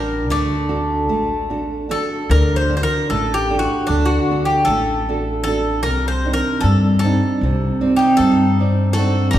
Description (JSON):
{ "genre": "greek folk, Greek bouzouki band", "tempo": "152 BPM (eighths)", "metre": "9/8", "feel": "straight", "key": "D phrygian dominant", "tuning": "A4 = 440 Hz", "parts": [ { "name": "Greek bouzouki", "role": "melody", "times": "0.0-9.4 s", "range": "D4 to D5", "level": "-21 LUFS", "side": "left 1 dB", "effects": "none" }, { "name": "Greek bouzouki", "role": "second line", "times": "0.0-1.5, 8.0-9.4 s", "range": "G3 to G4", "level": "-26 LUFS", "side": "left 1 dB", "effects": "none" }, { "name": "flamenco guitar", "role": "accompaniment", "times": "0.0-9.4 s", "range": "C3 to D5", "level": "-20 LUFS", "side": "right 3 dB", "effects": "none" }, { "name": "upright bass", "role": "bass", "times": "0.0-9.4 s", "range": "G1 to G2", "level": "-20 LUFS", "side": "left 1 dB", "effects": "none" } ], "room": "wet recital hall reverb, RT60 1.8 s", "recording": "recorded in a church or concert hall", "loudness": "-15 LUFS", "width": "side -12 dB against mid", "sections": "0.0-2.3 A section; 2.3-9.4 B section", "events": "speeding up 0.0-9.4", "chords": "0.0 D; 5.9 Cmadd9", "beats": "0.29 0.69 1.09 1.50 1.90 | 2.30 2.70 3.10 3.49 3.89 4.29 4.68 5.07 5.47 | 5.86 6.25 6.64 7.03 7.42 7.81 8.20 8.58 8.97 | 9.35" }